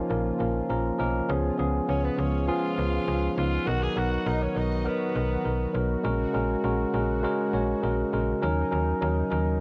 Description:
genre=pop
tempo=101 BPM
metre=4/4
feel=straight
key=Db mixolydian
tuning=A4 = 440 Hz
part: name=tine electric piano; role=accompaniment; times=0.0-9.6 s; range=F3 to Bb5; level=-29 LUFS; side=equal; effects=cassette tape
part: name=brassy analog pad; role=sustained chords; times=0.0-9.6 s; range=Db3 to Gb4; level=-39 LUFS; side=equal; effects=chorus, tremolo, cassette tape
part: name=slap-like FM bass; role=bass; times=0.0-9.6 s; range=Bb1 to Eb2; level=-31 LUFS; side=equal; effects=none
part: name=raspy tenor saxophone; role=melody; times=1.9-5.8 s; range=Cb4 to Ab4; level=-36 LUFS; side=equal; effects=none
part: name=warm studio violin section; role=second line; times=1.9-5.8 s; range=Cb5 to Ab5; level=-42 LUFS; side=equal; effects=cassette tape, analog delay
room=light reverb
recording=home recording on cassette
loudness=-27 LUFS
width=mono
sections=0.0-1.3 A section; 1.3-9.6 B section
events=tine electric piano fill 0.4-1.3, 9.0-9.6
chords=0.0 Bbm; 1.3 Db7; 3.7 Cbmaj7; 6.0 Gbadd9/Bb; 8.4 Ebm7

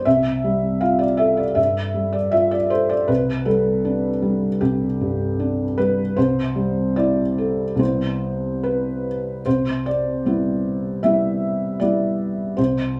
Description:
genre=neoclassical minimalist piano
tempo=70-80 BPM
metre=4/4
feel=rubato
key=C major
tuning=A4 = 440 Hz
part: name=felt-muted upright piano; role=solo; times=0.0-13.0 s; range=C2 to F5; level=-21 LUFS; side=equal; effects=none
room=light reverb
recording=small room reverb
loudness=-21 LUFS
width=mono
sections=0.0-9.5 A section; 9.5-13.0 B section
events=none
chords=0.1 Fadd9/C; 3.1 G5/C; 6.2 Am7/C; 7.8 Cmaj7

